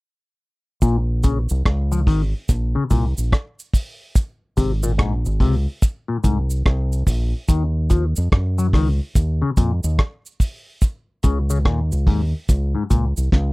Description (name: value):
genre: roots reggae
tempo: 72 BPM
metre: 4/4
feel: swing 63% on 16ths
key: Bb minor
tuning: A4 = 440 Hz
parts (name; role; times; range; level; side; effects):
- overdriven clav; arpeggios; 0.8-13.0 s; Ab2 to Gb3; -22 LUFS; left 3 dB; phaser
- fingered electric bass; bass; 0.8-13.5 s; Ab1 to Gb2; -20 LUFS; equal; none
- cloth-damped thuddy drum kit; drums; 0.8-13.5 s; hi-hat, kick drum, rim click, snare drum; -16 LUFS; equal; none
- cabasa; percussion; 0.8-13.3 s; none; -35 LUFS; right 4 dB; none
room: little or no reverb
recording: dry, close 1970s-style studio recording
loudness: -18 LUFS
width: side -23 dB against mid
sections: 0.8-13.5 A section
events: drum fill 13.3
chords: 0.8 Bbm; 4.2 Ab; 7.5 Ebm; 10.8 N.C.